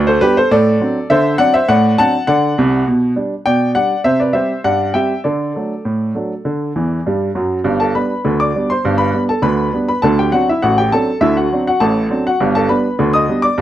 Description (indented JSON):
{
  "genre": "ragtime piano",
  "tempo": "101 BPM",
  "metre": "2/4",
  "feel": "straight",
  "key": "G major",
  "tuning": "A4 = 440 Hz",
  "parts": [
    { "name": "warm upright piano", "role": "solo", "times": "0.0-13.6 s", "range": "G1 to Eb6", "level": "-13 LUFS", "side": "equal", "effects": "none" }
  ],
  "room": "small room ambience",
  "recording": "dry, close 1970s-style studio recording",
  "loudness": "-13 LUFS",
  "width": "side -12 dB against mid",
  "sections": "0.0-7.7 A section; 7.7-13.6 B section",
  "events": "upright piano fill 6.8-7.7",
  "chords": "0.5 D7/A; 2.9 G/B; 4.1 C; 5.3 D; 7.7 G; 10.0 D7; 12.4 G"
}